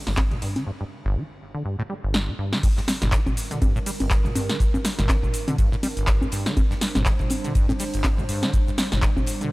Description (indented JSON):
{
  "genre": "acid house",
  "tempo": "122 BPM",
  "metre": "4/4",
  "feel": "swing 57% on 16ths",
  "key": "G minor",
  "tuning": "A4 = 444 Hz",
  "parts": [
    { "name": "warbly tape-like pad", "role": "sustained chords", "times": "0.0-9.5 s", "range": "G3 to C5", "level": "-34 LUFS", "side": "right 2 dB", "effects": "chorus, built-in reverb, sidechain pumping" },
    { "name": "acid bass, saw", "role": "riff", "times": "0.1-9.5 s", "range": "G1 to G3", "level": "-28 LUFS", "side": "equal", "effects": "tube saturation, analog chorus, analog delay" },
    { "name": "electro analog drum machine", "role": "drums", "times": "0.1-9.5 s", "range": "cabasa, congas, crash cymbal, handclaps, hi-hat, snare drum, toms", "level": "-26 LUFS", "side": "equal", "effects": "none" },
    { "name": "electronic kick drum", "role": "drums", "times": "0.2-9.3 s", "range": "none", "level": "-22 LUFS", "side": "equal", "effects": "none" },
    { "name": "huge arena drum kit", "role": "drums", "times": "0.2-9.4 s", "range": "hi-hat, ride cymbal, snare drum", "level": "-43 LUFS", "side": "left 1 dB", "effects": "sidechain pumping on hats, high-pass filter on hats, sidechain pumping on cymbals, high-pass filter on cymbals, high-pass filter on snare, high-pass filter on room" }
  ],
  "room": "little or no reverb",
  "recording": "none",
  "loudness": "-21 LUFS",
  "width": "side -21 dB against mid",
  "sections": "0.0-2.6 A section; 2.6-9.5 B section",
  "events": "filter sweep on acid bass 0.0-2.6; break 0.7-2.6; drum fill 2.1-2.6; drop 2.6-9.5",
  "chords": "0.0 Gm"
}